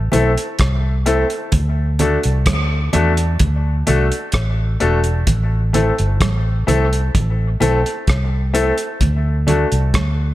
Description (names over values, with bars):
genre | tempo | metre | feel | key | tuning
dub reggae | 64 BPM | 4/4 | straight | A dorian | A4 = 439 Hz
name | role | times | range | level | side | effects
vintage muted fingered electric bass | bass | 0.0-10.3 s | E1 to E2 | -17 LUFS | equal | none
bright upright piano | stabs | 0.1-9.7 s | A3 to A4 | -20 LUFS | left 2 dB | dub echo
cloth-damped thuddy drum kit | drums | 0.1-10.2 s | hi-hat, kick drum, rim click | -20 LUFS | equal | none
congas | percussion | 0.1-10.2 s | none | -26 LUFS | right 6 dB | none
room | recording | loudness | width
light reverb, small room ambience | none | -15 LUFS | side -15 dB against mid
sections
0.0-10.3 A section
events
none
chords
0.0 Am; 1.5 D; 5.3 Am; 9.0 D